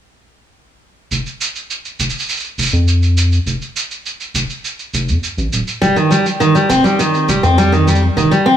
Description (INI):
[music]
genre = folktronica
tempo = 102 BPM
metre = 4/4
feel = straight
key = unclear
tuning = A4 = 440 Hz
[part]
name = round analog bass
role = bass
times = 1.1-8.3 s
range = Eb1 to F2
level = -15 LUFS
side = equal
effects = none
[part]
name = shaker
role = drums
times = 1.1-8.4 s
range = none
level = -21 LUFS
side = right 3 dB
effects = overdrive
[part]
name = picked steel-string acoustic guitar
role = arpeggios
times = 5.8-8.6 s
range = Eb3 to C4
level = -11 LUFS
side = equal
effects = digital delay
[sound]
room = light reverb, digital ambience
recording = small room ambience, faint mains hum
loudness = -13 LUFS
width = side -10 dB against mid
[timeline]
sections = 1.1-8.6 A section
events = none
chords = 1.1 N.C.; 5.8 Cm/F